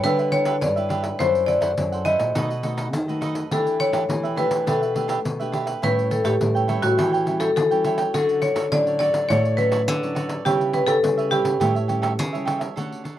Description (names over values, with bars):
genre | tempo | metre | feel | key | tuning
samba and choro | 104 BPM | 4/4 | straight | unclear | A4 = 442 Hz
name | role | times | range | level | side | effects
marimba with hard mallets | melody | 0.0-12.4 s | F#4 to D#5 | -22 LUFS | left 1 dB | none
cavaquinho | accompaniment | 0.0-13.2 s | D4 to G5 | -27 LUFS | right 6 dB | none
nylon-string guitar | accompaniment | 0.0-13.2 s | F#2 to B4 | -34 LUFS | left 3 dB | none
nylon-string guitar | bass | 0.0-12.7 s | F#2 to E3 | -27 LUFS | right 1 dB | none
pandeiro | percussion | 0.0-13.2 s | none | -29 LUFS | left 1 dB | none
room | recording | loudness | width
light reverb | rough home demo mix | -19 LUFS | side -12 dB against mid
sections
0.0-12.8 A section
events
none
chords
0.0 G6; 1.2 F#m7b5; 2.4 B7; 3.5 Em7; 5.8 A7; 8.1 Dmaj9; 10.5 C#m7b5; 11.6 A7